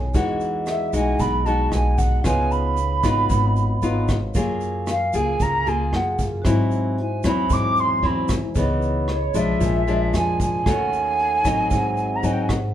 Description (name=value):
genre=bossa nova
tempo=114 BPM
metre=4/4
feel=straight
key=unclear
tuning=A4 = 440 Hz
part: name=nylon-string guitar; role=accompaniment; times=0.0-12.7 s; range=G#2 to G#4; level=-24 LUFS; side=left 3 dB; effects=none
part: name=vibraphone with medium mallets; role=accompaniment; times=0.0-12.7 s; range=D#4 to B5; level=-30 LUFS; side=right 2 dB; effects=none
part: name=upright bass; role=bass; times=0.0-12.7 s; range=G#1 to G#2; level=-24 LUFS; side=equal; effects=none
part: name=vintage brush drum kit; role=drums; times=0.1-12.6 s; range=hi-hat, kick drum, rim click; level=-26 LUFS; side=equal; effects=none
part: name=tube shaker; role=percussion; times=0.1-12.7 s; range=none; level=-42 LUFS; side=right 8 dB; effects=none
part: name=mellow concert flute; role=melody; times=0.7-12.5 s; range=C#5 to D6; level=-23 LUFS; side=right 2 dB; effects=none
room=moderate large studio reverb, RT60 0.9 s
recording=band playing live in one room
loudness=-18 LUFS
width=side -11 dB against mid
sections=0.0-12.7 A section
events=none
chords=0.1 Emaj9; 2.2 C#9; 4.4 F#maj9; 6.5 G#aug7; 8.6 C#m9; 9.6 A#7; 10.7 D#m7b5; 11.7 G#7